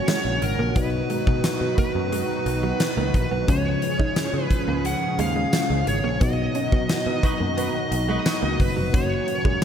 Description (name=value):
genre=1980s-style pop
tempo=88 BPM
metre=4/4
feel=straight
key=unclear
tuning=A4 = 442 Hz
part: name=high-gain lead guitar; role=melody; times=0.0-9.6 s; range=A#4 to F#5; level=-28 LUFS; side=equal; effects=distortion, analog delay
part: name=FM electric piano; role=accompaniment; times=0.0-9.6 s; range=B2 to D#5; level=-29 LUFS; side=left 3 dB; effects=chorus
part: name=lush unison pad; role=sustained chords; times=0.0-9.6 s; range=G#2 to G#4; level=-29 LUFS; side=right 1 dB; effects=chorus, phaser
part: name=direct-recorded clean electric guitar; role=riff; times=0.0-9.6 s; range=F#3 to D#4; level=-31 LUFS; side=right 3 dB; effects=ensemble chorus
part: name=huge arena drum kit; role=drums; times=0.1-9.6 s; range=hi-hat, kick drum, snare drum, tambourine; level=-25 LUFS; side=equal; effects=none
part: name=picked electric bass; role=bass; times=0.2-9.6 s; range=E#1 to C#3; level=-27 LUFS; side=right 1 dB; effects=none
part: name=clear horn section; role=stabs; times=7.2-8.5 s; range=D#4 to B4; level=-34 LUFS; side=right 2 dB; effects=analog delay
room=moderate lush hall reverb, RT60 2.4 s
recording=dreamy mix soaked in reverb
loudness=-20 LUFS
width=side -8 dB against mid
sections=0.0-9.6 A section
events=band accent 6.2-8.9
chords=0.0 F#; 0.8 B; 3.5 C#; 6.2 B; 8.9 F#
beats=0.08 | 0.76 1.44 2.12 2.80 | 3.48 4.17 4.85 5.53 | 6.21 6.89 7.58 8.26 | 8.94 9.62